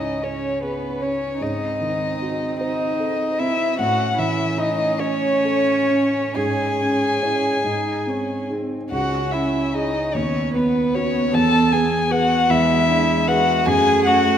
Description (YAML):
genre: classical, slow romantic movement for piano quartet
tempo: 43-52 BPM (dotted quarters)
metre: 6/8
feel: rubato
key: C# minor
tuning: A4 = 439 Hz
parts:
  - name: dark violin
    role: melody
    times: 0.0-14.4 s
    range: B4 to A5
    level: -22 LUFS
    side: left 4 dB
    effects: none
  - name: clear cello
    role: second line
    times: 0.0-14.4 s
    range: B3 to A4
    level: -24 LUFS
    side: right 5 dB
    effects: none
  - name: dark baby grand piano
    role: accompaniment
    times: 0.0-14.4 s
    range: C#2 to C#5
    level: -24 LUFS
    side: equal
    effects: none
  - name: dark viola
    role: accompaniment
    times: 0.0-14.4 s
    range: G#3 to D#4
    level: -26 LUFS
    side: right 4 dB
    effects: none
room: wet concert hall reverb, RT60 1.9 s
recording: none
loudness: -18 LUFS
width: side -9 dB against mid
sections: 0.0-14.4 A section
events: none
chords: 0.0 C#m; 1.4 G#7b9; 3.8 A; 6.4 C#m/G#; 7.6 G#; 8.9 C#m; 10.1 B/D#; 11.3 E; 12.5 E7; 13.7 F#m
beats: 0.23 | 1.41 2.61 | 3.79 5.00 | 6.36 7.65 | 8.92 10.15 | 11.33 12.49 | 13.66